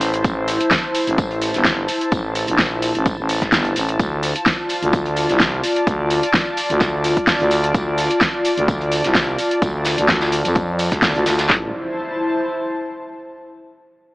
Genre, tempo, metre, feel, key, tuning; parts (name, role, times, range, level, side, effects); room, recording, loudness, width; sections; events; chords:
bass house; 128 BPM; 4/4; swing 54% on 16ths; A minor; A4 = 440 Hz
growling FM bass; bass; 0.0-11.7 s; G1 to F2; -21 LUFS; equal; tube saturation, sidechain pumping
big-room dance drum kit; drums; 0.0-11.5 s; cabasa, hi-hat, snare drum; -20 LUFS; equal; overdrive
modern studio drum kit; drums; 0.0-11.5 s; hi-hat, snare drum, tambourine; -28 LUFS; equal
downlifter and impact; sound effects; 0.0-0.2, 11.6-13.4 s; -38 LUFS; equal
airy breathy pad; texture; 0.0-13.3 s; E4 to A5; -21 LUFS; equal; chorus, sidechain pumping
house drum kit; drums; 0.2-11.6 s; handclaps, kick drum, snare drum; -19 LUFS; equal; overdrive
moderate digital room reverb, RT60 0.9 s, studio reverb; AM radio sound; -16 LUFS; side -21 dB against mid
0.0-11.5 A section; 11.5-13.4 B section
0.0 Am; 4.0 Dm; 11.5 Am